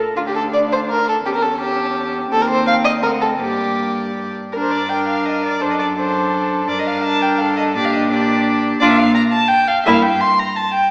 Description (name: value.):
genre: quick classical-period movement for string quartet.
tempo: 168 BPM.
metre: 3/4.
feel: rubato.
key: G minor.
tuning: A4 = 440 Hz.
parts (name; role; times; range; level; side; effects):
warm viola; accompaniment; 0.0-10.0 s; Bb3 to A4; -24 LUFS; equal; none.
rich violin; melody; 0.2-10.9 s; Bb4 to C6; -23 LUFS; equal; none.
warm violin; second line; 0.2-10.0 s; E4 to F5; -22 LUFS; equal; none.
rich cello; bass; 0.2-10.2 s; D2 to Bb2; -26 LUFS; equal; none.
room: wet scoring stage reverb, RT60 1.7 s.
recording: recorded in a church or concert hall, small speaker sound.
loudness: -17 LUFS.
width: mono.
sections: 0.0-4.5 A section; 4.5-10.9 B section.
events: none.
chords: 0.2 Dm; 1.3 A7/E; 2.3 Cm/Eb; 3.0 D7; 3.4 Gm; 5.6 D7/F#; 6.7 Gm; 7.8 Gm/Bb; 9.9 Edim/G (rootless).